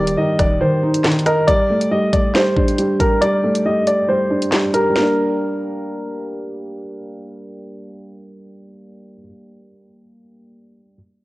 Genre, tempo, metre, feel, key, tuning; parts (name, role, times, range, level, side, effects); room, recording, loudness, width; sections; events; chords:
hip hop, drill; 138 BPM; 4/4; half-time; G minor; A4 = 440 Hz
warm concert grand piano; melody; 0.0-6.2 s; Bb4 to Eb5; -18 LUFS; equal; low-pass filter, cassette tape, analog delay
felt-muted upright piano; accompaniment; 0.0-11.0 s; Eb3 to Eb5; -20 LUFS; equal; low-pass filter, cassette tape
long sustained 808-style bass; bass; 0.0-0.6 s; Eb1; -29 LUFS; equal
drill drum kit; drums; 0.1-5.1 s; handclaps, hi-hat, kick drum, rim click, snare drum; -19 LUFS; equal; cassette tape
moderate spring reverb, RT60 2.0 s, small room ambience; home recording on cassette; -15 LUFS; side -19 dB against mid
0.0-1.5 A section; 1.5-5.0 B section; 5.0-8.4 C section
kick muted 0.6-1.5, 3.2-5.0; filter sweep 1.5-5.0
0.0 Eb; 1.5 Gsus2; 5.0 Gm